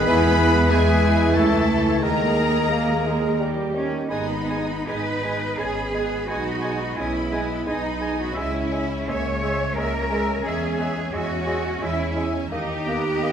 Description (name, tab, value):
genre	classical, slow romantic movement for symphony orchestra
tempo	75-96 BPM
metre	3/4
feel	rubato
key	G# minor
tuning	A4 = 440 Hz
part	rich studio violin section	melody	0.0-13.3 s	E5 to D#6	-32 LUFS	left 2 dB	none
part	bright oboe	second line	0.0-13.3 s	A#4 to G#5	-32 LUFS	right 1 dB	none
part	clear clarinet	second line	0.0-13.3 s	G4 to D#5	-34 LUFS	left 4 dB	none
part	rich studio violin section	second line	0.0-13.3 s	G#4 to B5	-33 LUFS	left 5 dB	none
part	silver concert flute	second line	0.0-13.3 s	D#5 to B5	-34 LUFS	left 1 dB	none
part	rich studio viola section	accompaniment	0.0-13.3 s	C#3 to G#4	-28 LUFS	right 2 dB	none
part	warm bassoon	accompaniment	0.0-13.3 s	D#3 to A#3	-30 LUFS	right 1 dB	none
part	dark French horn section	sustained chords	0.0-13.3 s	G#3 to D#4	-30 LUFS	left 2 dB	none
part	mellow trumpet	stabs	0.0-3.4 s	G#4 to B4	-30 LUFS	equal	none
part	rich studio cello section	bass	0.0-13.3 s	G#3 to C#5	-27 LUFS	right 2 dB	none
part	rich studio double bass section	bass	0.0-13.3 s	G#1 to E2	-26 LUFS	right 1 dB	none
room	wet concert hall reverb, RT60 1.9 s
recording	minimal, uncompressed stereo recording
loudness	-20 LUFS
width	side -8 dB against mid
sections	0.0-4.1 A section; 4.1-13.3 B section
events	none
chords	0.1 E; 1.4 A/C#; 2.0 D#sus4; 3.4 D#; 4.1 G#m; 6.3 G#m/B; 8.4 C#m; 10.5 C#m/E; 12.5 D#